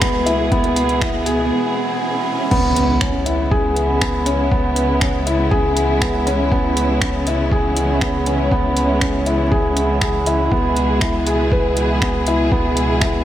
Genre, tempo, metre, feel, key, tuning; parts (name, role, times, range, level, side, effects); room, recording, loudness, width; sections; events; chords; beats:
piano and strings electronica; 120 BPM; 4/4; straight; C# minor; A4 = 440 Hz
dark studio string section; sustained chords; 0.0-13.2 s; B2 to G#4; -22 LUFS; right 1 dB; sidechain pumping
felt-muted upright piano; riff; 0.0-13.2 s; B3 to B4; -19 LUFS; left 1 dB; digital delay
warm sub bass; bass; 0.0-13.2 s; C#2; -22 LUFS; equal; tube saturation, sidechain pumping
deep house drum kit; drums; 0.0-13.1 s; crash cymbal, finger snaps, hi-hat; -24 LUFS; equal; overdrive
electronic kick drum; drums; 0.0-13.1 s; -21 LUFS; equal
riser and impact; sound effects; 0.0-4.5 s; -26 LUFS; right 3 dB
moderate lush hall reverb, RT60 1.9 s; -15 LUFS; side -12 dB against mid
0.0-2.5 A section; 2.5-13.2 B section
build-up 0.0-2.5; riser 0.0-2.5; break 1.5-2.5; drop 2.5-13.2; impact 2.5-4.5
0.0 C#m7
0.01 | 0.52 1.01 1.51 2.02 | 2.52 3.02 3.52 4.01 | 4.51 5.01 5.51 6.01 | 6.51 7.01 7.51 8.02 | 8.52 9.02 9.52 10.02 | 10.52 11.02 11.52 12.02 | 12.52 13.02